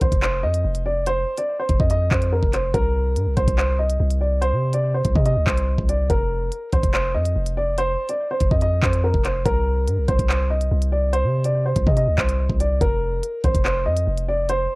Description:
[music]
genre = hip hop, drill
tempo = 143 BPM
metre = 4/4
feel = half-time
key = unclear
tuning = A4 = 440 Hz
[part]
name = dark baby grand piano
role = melody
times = 0.0-14.8 s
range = Bb4 to Eb5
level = -23 LUFS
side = equal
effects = low-pass filter, cassette tape
[part]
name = long sustained 808-style bass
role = bass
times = 0.0-14.7 s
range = F1 to C3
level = -21 LUFS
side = equal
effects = none
[part]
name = drill drum kit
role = drums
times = 0.0-14.6 s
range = handclaps, hi-hat, kick drum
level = -22 LUFS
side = equal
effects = cassette tape
[sound]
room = little or no reverb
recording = home recording on cassette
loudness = -18 LUFS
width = side -24 dB against mid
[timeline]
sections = 0.0-14.8 A section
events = none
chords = 0.0 F7(no3); 2.7 N.C.; 6.1 F5; 9.5 N.C.; 12.8 F7(no3)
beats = 0.22 0.64 | 1.06 1.48 1.90 2.32 | 2.74 3.16 3.58 4.00 | 4.42 4.84 5.26 5.68 | 6.10 6.52 6.94 7.36 | 7.78 8.20 8.62 9.04 | 9.46 9.88 10.29 10.71 | 11.13 11.55 11.97 12.39 | 12.81 13.23 13.65 14.07 | 14.49

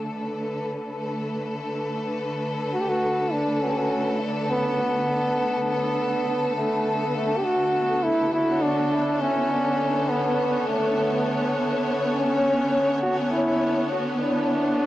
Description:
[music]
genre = ambient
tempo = 102 BPM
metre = 4/4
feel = straight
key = B minor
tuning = A4 = 440 Hz
[part]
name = clear studio string section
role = sustained chords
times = 0.0-14.9 s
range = D3 to C#5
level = -25 LUFS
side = equal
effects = cassette tape
[part]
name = clear trombone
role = melody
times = 2.7-14.9 s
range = A3 to G4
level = -23 LUFS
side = equal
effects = cassette tape, dub echo
[sound]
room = wet spring reverb, RT60 1.1 s, small room ambience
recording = home recording on cassette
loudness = -22 LUFS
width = side -14 dB against mid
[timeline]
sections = 0.0-7.1 A section; 7.1-14.9 B section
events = none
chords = 0.0 Bm7; 7.1 Bm9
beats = | 0.09 0.68 1.26 1.85 | 2.44 3.03 3.62 4.21 | 4.79 5.38 5.97 6.56 | 7.15 7.73 8.32 8.91 | 9.50 10.09 10.68 11.26 | 11.85 12.44 13.03 13.62 | 14.21 14.79

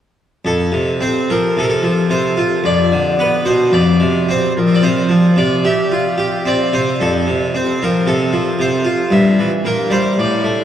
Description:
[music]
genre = classical, baroque-style suite movement for harpsichord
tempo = 56 BPM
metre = 3/4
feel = rubato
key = F major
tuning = A4 = 439 Hz
[part]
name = harpsichord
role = solo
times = 0.4-10.6 s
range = F2 to E5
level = -13 LUFS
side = equal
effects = none
[sound]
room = wet cathedral reverb, RT60 5.1 s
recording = worn, warbling old tape, cassette tape, warbly pitch drift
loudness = -13 LUFS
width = side -10 dB against mid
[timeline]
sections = 0.4-10.6 A section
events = none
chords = 0.4 F5; 2.6 Bdim/F; 3.7 C5/F; 7.0 F5; 9.1 Edim/G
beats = | 0.44 1.55 2.65 | 3.73 4.83 5.90 | 6.98 8.05 9.11 | 10.18

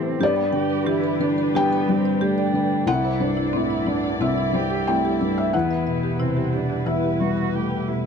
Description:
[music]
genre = neoclassical piano and strings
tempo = 90 BPM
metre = 4/4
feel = rubato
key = G major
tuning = A4 = 439 Hz
[part]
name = muted cello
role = second line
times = 0.0-8.1 s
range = B3 to G4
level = -28 LUFS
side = right 10 dB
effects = none
[part]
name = felt-muted upright piano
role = accompaniment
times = 0.0-8.1 s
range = C2 to G5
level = -21 LUFS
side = left 3 dB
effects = none
[part]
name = muted chamber string section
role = sustained chords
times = 0.0-8.1 s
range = G3 to D5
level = -31 LUFS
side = left 1 dB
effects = none
[part]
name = buzzing marimba with medium hard mallets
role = arpeggios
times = 0.2-8.0 s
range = C4 to G5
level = -30 LUFS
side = right 6 dB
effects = tape echo
[sound]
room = light reverb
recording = close, detailed microphones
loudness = -19 LUFS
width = side -6 dB against mid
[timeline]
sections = 0.0-8.1 A section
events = none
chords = 0.2 G; 2.9 Cadd9; 5.5 Em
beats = | 0.21 0.87 1.56 2.22 | 2.88 3.54 4.20 4.87 | 5.54 6.20 6.86 7.54

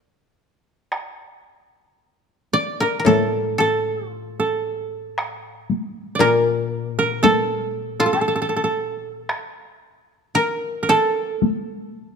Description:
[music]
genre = japanese traditional, Japanese chamber music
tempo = 57 BPM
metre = 4/4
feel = rubato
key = unclear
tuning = A4 = 440 Hz
[part]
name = koto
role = melody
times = 0.0-12.2 s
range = A4 to D5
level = -22 LUFS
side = left 2 dB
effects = none
[part]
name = koto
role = second line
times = 0.0-12.2 s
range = A4 to D5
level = -22 LUFS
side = right 3 dB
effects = none
[part]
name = taiko ensemble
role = percussion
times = 0.9-11.7 s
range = none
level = -23 LUFS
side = left 3 dB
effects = none
[part]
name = koto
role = accompaniment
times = 3.0-9.3 s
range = A2 to Bb2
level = -24 LUFS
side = left 5 dB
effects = none
[sound]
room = moderate recital hall reverb, RT60 1.7 s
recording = dark, warm production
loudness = -19 LUFS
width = side -6 dB against mid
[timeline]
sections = 0.9-12.2 A section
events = none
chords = none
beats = | 0.91 2.00 3.06 4.12 | 5.17 6.21 7.24 8.26 | 9.29 10.35 11.41

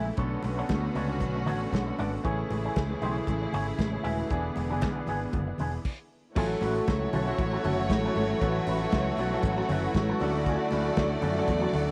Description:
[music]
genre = disco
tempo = 117 BPM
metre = 4/4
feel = straight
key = A major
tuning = A4 = 440 Hz
[part]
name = clear concert grand piano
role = accompaniment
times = 0.0-11.9 s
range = D3 to F#5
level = -37 LUFS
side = equal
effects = none
[part]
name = electric guitar with an envelope filter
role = accompaniment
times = 0.0-11.9 s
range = B3 to E5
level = -38 LUFS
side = equal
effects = none
[part]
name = rich studio string section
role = sustained chords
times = 0.0-11.9 s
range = C#3 to G#4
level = -36 LUFS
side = equal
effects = none
[part]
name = picked electric bass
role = bass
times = 0.0-11.9 s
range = D#1 to F#2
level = -34 LUFS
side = equal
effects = none
[part]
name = warm soul drum kit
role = drums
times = 0.2-11.9 s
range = crash cymbal, hi-hat, kick drum, snare drum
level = -33 LUFS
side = equal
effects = none
[part]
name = congas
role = percussion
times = 0.4-11.9 s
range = none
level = -38 LUFS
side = equal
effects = none
[part]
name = warm studio violin section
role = second line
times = 6.4-11.9 s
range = A3 to D5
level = -34 LUFS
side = equal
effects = none
[sound]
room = light reverb, studio reverb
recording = none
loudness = -28 LUFS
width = mono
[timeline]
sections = 0.0-6.4 A section; 6.4-11.9 B section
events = grand piano fill 1.5-2.2; stop 5.9-6.4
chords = 0.2 Bm9; 2.2 Amaj7; 4.3 E7; 6.4 A6; 10.2 Dmaj7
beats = | 0.18 0.70 1.22 1.73 | 2.25 2.76 3.28 3.79 | 4.31 4.83 5.34 5.85 | 6.37 6.88 7.39 7.90 | 8.42 8.93 9.44 9.95 | 10.46 10.97 11.48

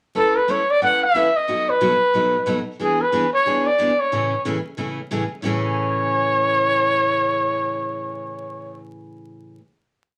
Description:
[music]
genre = country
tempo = 182 BPM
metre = 4/4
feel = swing 62% on 8ths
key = A major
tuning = A4 = 438 Hz
[part]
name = picked steel-string acoustic guitar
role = accompaniment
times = 0.1-9.6 s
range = A2 to B4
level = -28 LUFS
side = equal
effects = none
[part]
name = breathy trumpet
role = melody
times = 0.2-8.8 s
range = G#4 to F#5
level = -21 LUFS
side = equal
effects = none
[sound]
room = wet studio reverb, RT60 0.6 s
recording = vinyl crackle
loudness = -20 LUFS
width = mono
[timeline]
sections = 0.2-5.4 A section; 5.4-8.1 final chord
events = none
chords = 0.2 Aadd9; 1.5 B7; 2.8 E7; 4.1 Amaj7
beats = | 0.16 0.49 0.82 1.15 | 1.48 1.81 2.15 2.48 | 2.81 3.14 3.47 3.80 | 4.12 4.46 4.78 5.11 | 5.44 5.77 6.10 6.43 | 6.76 7.09 7.42 7.75

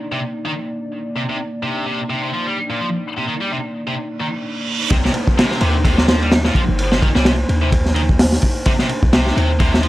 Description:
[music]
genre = breakbeat, breaks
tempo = 128 BPM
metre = 4/4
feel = swing 57% on 16ths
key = C minor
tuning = A4 = 439 Hz
[part]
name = dark analog pad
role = sustained chords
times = 0.0-9.9 s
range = Bb3 to D5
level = -25 LUFS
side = equal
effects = chorus, sidechain pumping
[part]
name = high-gain distorted guitar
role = riff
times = 0.1-9.9 s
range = Bb2 to G3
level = -22 LUFS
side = equal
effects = distortion, overdrive, analog delay
[part]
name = reverse cymbal and downlifter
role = sound effects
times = 4.3-8.7 s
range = none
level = -28 LUFS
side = right 2 dB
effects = none
[part]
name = warm 808-style bass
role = bass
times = 4.9-9.9 s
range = G1 to Eb2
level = -18 LUFS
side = equal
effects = tube saturation
[part]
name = crunchy breakbeat drum kit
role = drums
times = 4.9-9.9 s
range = hi-hat, kick drum, ride cymbal, snare drum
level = -16 LUFS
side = equal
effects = none
[sound]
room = light reverb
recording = dry, gritty hardware recording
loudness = -16 LUFS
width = side -16 dB against mid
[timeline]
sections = 0.0-4.9 A section; 4.9-9.9 B section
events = reverse cymbal 4.3-4.9; drop 4.9-9.9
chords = 0.0 Cm9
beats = 0.23 0.69 | 1.16 1.63 2.10 2.57 | 3.04 3.51 3.98 4.44 | 4.91 5.38 5.85 6.32 | 6.79 7.26 7.72 8.19 | 8.66 9.13 9.60

